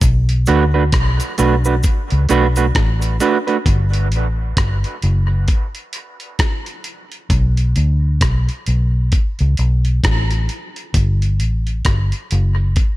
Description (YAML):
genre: dub reggae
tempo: 66 BPM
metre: 4/4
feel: swing 60% on 16ths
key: B minor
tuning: A4 = 440 Hz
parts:
  - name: vintage muted fingered electric bass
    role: bass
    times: 0.0-12.7 s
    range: F#1 to D2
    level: -15 LUFS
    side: equal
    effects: none
  - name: dusty soul sampler-style drum kit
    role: drums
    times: 0.0-13.0 s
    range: hi-hat, kick drum, rim click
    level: -18 LUFS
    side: equal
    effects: none
  - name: cabasa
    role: percussion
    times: 0.0-3.5 s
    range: none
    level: -32 LUFS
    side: left 1 dB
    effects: none
  - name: clean electric guitar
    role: accompaniment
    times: 0.5-3.6 s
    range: A3 to B4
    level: -19 LUFS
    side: right 5 dB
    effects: dub echo
room: digital ambience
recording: none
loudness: -14 LUFS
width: side -16 dB against mid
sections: 0.0-13.0 A section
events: break 3.7-13.0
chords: 0.0 Bm7; 3.7 F#m; 7.3 N.C.; 10.9 F#m